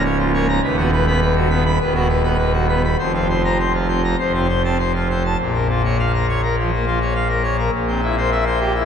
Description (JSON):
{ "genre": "classical, organ toccata", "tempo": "102 BPM", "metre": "4/4", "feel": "straight", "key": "Bb minor", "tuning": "A4 = 440 Hz", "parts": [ { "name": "pipe organ, full organ", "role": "solo", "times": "0.0-8.8 s", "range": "Db1 to B5", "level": "-16 LUFS", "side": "equal", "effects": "none" } ], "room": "wet cathedral reverb, RT60 5.2 s", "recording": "dark, warm production", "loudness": "-16 LUFS", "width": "side -8 dB against mid", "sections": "0.0-5.4 A section; 5.4-8.8 B section", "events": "none", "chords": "0.0 Bbm/Db; 0.6 B/D#; 3.0 Fsus4; 4.2 F; 5.4 Bbm; 7.7 C7/Bb" }